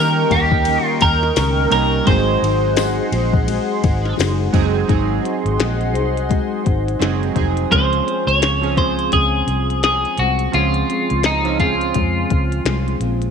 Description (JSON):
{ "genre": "indie pop, bedroom pop", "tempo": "85 BPM", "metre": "4/4", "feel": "swing 60% on 16ths", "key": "Db major", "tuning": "A4 = 439 Hz", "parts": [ { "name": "twelve-string electric guitar", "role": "melody", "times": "0.0-13.0 s", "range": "Eb4 to Db5", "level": "-18 LUFS", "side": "right 1 dB", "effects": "wide subtle chorus, slapback echo" }, { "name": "chorused retro synth keys", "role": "accompaniment", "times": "0.0-13.3 s", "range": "F3 to Bb4", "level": "-24 LUFS", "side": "right 13 dB", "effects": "cassette tape" }, { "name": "picked steel-string acoustic guitar", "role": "accompaniment", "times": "0.0-13.3 s", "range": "Db3 to C5", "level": "-25 LUFS", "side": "left 13 dB", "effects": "analog chorus, warbly pitch drift" }, { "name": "phased analog pad", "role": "sustained chords", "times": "0.0-7.7 s", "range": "Ab4 to Db6", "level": "-26 LUFS", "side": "equal", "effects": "phaser, chorus" }, { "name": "vintage muted fingered electric bass", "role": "bass", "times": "0.0-13.3 s", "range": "F1 to Eb3", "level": "-20 LUFS", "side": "equal", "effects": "none" }, { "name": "glitchy drum kit", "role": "drums", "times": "0.3-13.3 s", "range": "hi-hat, kick drum, ride cymbal, snare drum", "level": "-21 LUFS", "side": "left 4 dB", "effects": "none" }, { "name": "tambourine", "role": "percussion", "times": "1.4-4.4 s", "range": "none", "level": "-35 LUFS", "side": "left 13 dB", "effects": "none" } ], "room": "light reverb, digital ambience", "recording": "1960s-style stereo with parts hard left and right", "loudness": "-15 LUFS", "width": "side -6 dB against mid", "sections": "0.0-4.9 A section; 4.9-7.7 B section; 7.7-13.3 C section", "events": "none", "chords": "0.0 Eb7; 2.1 Ab7; 7.7 Dbmaj7" }